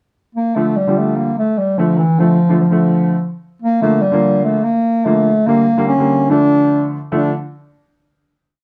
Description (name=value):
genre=klezmer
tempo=146 BPM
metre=4/4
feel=straight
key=D harmonic minor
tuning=A4 = 437 Hz
part: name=mellow bass clarinet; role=melody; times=0.4-7.3 s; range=E3 to D4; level=-16 LUFS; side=equal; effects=plate reverb
part: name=clear upright piano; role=accompaniment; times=0.6-7.3 s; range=D3 to Bb3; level=-20 LUFS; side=equal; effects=none
room=moderate studio reverb, RT60 0.6 s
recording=none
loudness=-15 LUFS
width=mono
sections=0.0-0.6 pickup bar; 0.6-7.1 A section; 7.1-8.6 final chord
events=none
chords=0.0 N.C.; 0.6 Dm; 3.8 Bb/D; 5.5 Gm/D; 6.3 Dm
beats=0.14 | 0.55 0.96 1.37 1.78 | 2.19 2.60 3.02 3.43 | 3.84 4.25 4.66 5.07 | 5.48 5.89 6.30 6.71 | 7.12